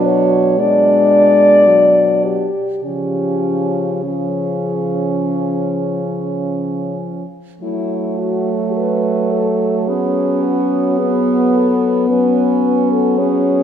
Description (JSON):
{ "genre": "classical, lyrical piece for horn quartet", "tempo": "49-57 BPM", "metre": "4/4", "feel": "rubato", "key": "F# minor", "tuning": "A4 = 440 Hz", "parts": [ { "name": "dark French horn", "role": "melody", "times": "0.0-13.6 s", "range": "E4 to D5", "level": "-16 LUFS", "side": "left 2 dB", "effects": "none" }, { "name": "warm French horn", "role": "second line", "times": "0.0-13.6 s", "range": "A3 to D4", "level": "-20 LUFS", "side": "right 6 dB", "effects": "none" }, { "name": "mellow French horn", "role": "accompaniment", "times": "0.0-13.6 s", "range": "E#3 to C#4", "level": "-18 LUFS", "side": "left 3 dB", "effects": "none" }, { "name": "mellow French horn", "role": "bass", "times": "0.0-13.6 s", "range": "B2 to F#3", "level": "-22 LUFS", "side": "right 2 dB", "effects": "none" } ], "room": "moderate concert hall reverb, RT60 2.3 s", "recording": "none", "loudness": "-13 LUFS", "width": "side -9 dB against mid", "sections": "0.0-7.6 A section; 7.6-13.6 B section", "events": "none", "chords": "0.0 Bm; 0.6 G#dim/B; 2.8 C#; 7.6 F#m" }